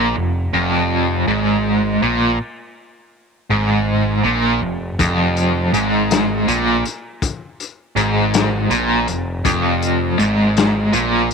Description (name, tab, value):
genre	psychedelic rock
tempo	54 BPM (dotted quarters)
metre	6/8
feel	straight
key	unclear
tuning	A4 = 441 Hz
part	overdriven electric guitar	riff	0.0-11.3 s	F2 to Bb2	-16 LUFS	right 1 dB	tremolo
part	growling picked electric bass	bass	0.0-11.3 s	F1 to Bb1	-23 LUFS	equal	overdrive
part	vintage drum kit	drums	5.0-11.3 s	hi-hat, kick drum, snare drum	-21 LUFS	left 6 dB	none
room	moderate spring reverb, RT60 2.5 s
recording	1960s-style stereo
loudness	-15 LUFS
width	side -5 dB against mid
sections	0.0-11.3 A section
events	none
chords	0.0 Fmadd11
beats	| 0.53 1.64 | 2.75 3.87 | 4.98 6.10 | 7.21 8.33 | 9.44 10.56